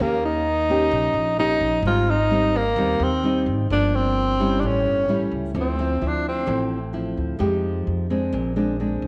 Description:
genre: bossa nova.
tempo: 130 BPM.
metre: 4/4.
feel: straight.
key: D minor from 5.6 s.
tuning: A4 = 441 Hz.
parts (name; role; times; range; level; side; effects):
mellow tenor saxophone; melody; 0.0-6.7 s; Bb3 to F4; -24 LUFS; equal; tape echo.
nylon-string guitar; accompaniment; 0.0-9.1 s; G2 to G4; -27 LUFS; equal; none.
upright bass; bass; 0.0-9.1 s; G1 to F2; -28 LUFS; equal; none.
room: moderate echo chamber reverb, RT60 1.6 s, small room ambience.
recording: none.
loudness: -22 LUFS.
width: mono.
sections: 0.0-5.6 A section; 5.6-9.1 B section.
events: tenor saxophone solo 5.6-9.1.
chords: 0.0 Eb7; 1.8 Abmaj7; 3.7 Gm7; 4.6 A7; 5.6 Dm9; 7.4 Fm9; 8.3 Bb9.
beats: 0.46 0.92 1.38 | 1.85 2.31 2.77 3.24 | 3.70 4.16 4.62 5.09 | 5.55 6.01 6.48 6.94 | 7.41 7.87 8.33 8.80.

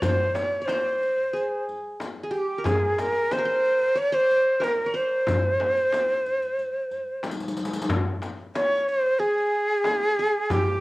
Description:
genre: Arabic maqam ensemble.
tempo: 92 BPM.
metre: 4/4.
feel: straight.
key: C maqam saba.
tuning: A4 = 440 Hz.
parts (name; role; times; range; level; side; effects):
breathy bright ney; melody; 0.0-10.8 s; G4 to D5-48c; -22 LUFS; equal; cassette tape.
qanun; second line; 0.0-10.8 s; G4 to D5-50c; -31 LUFS; equal; cassette tape.
darbuka; percussion; 0.0-10.7 s; none; -29 LUFS; left 1 dB; none.
frame drum; percussion; 0.0-10.7 s; none; -33 LUFS; left 2 dB; none.
riq; percussion; 0.0-10.7 s; none; -35 LUFS; left 2 dB; none.
room: wet studio reverb, RT60 0.6 s.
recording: home recording on cassette.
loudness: -22 LUFS.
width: side -20 dB against mid.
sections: 0.0-7.9 A section; 7.9-10.8 B section.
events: drum fill 7.2-7.9.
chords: none.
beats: | 0.03 0.69 1.34 2.00 | 2.65 3.31 3.96 4.62 | 5.27 5.92 6.58 7.23 | 7.89 8.54 9.20 9.85 | 10.51.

